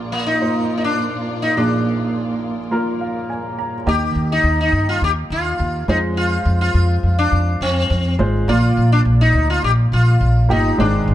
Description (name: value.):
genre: piano-driven pop.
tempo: 104 BPM.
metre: 4/4.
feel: straight.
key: unclear.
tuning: A4 = 440 Hz.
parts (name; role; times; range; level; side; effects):
warm baby grand piano; accompaniment; 0.0-11.1 s; Bb1 to Bb5; -22 LUFS; right 2 dB; none.
warm studio string section; sustained chords; 0.0-3.8 s; Bb2 to D5; -28 LUFS; equal; none.
sitar; melody; 0.1-11.1 s; Bb3 to G4; -20 LUFS; left 2 dB; none.
upright bass; bass; 3.9-11.1 s; G1 to G2; -16 LUFS; equal; none.
room: light reverb, studio reverb.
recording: dark, warm production.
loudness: -15 LUFS.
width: side -12 dB against mid.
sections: 0.0-3.9 A section; 3.9-11.1 B section.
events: grand piano fill 2.7-3.9.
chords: 0.0 Bb; 3.9 Eb; 5.9 Fm; 8.5 Bb.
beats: 0.41 0.98 | 1.56 2.14 2.71 3.29 | 3.87 4.44 5.02 5.60 | 6.17 6.75 7.33 7.90 | 8.48 9.06 9.63 10.21 | 10.79.